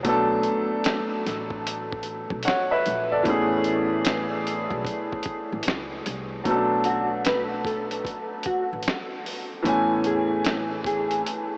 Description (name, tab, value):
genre	lo-fi hip hop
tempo	75 BPM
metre	4/4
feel	swing 65% on 16ths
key	unclear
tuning	A4 = 439 Hz
part	clear upright piano	accompaniment	0.0-11.6 s	E3 to G#5	-27 LUFS	equal	cassette tape
part	upright bass	bass	0.0-11.2 s	A1 to C#2	-40 LUFS	equal	none
part	lo-fi sampler-style drum kit	drums	0.0-11.5 s	hi-hat, kick drum, snare drum	-33 LUFS	equal	none
part	mellow electric guitar	melody	6.9-11.2 s	F#4 to B4	-31 LUFS	equal	ensemble chorus
room	wet huge ambient reverb, RT60 7.9 s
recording	dreamy mix soaked in reverb, cassette tape, small speaker sound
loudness	-25 LUFS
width	mono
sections	0.0-6.5 A section; 6.5-11.6 B section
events	none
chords	0.1 Bm7; 3.2 Amaj9; 6.5 Bm7; 9.7 Amaj9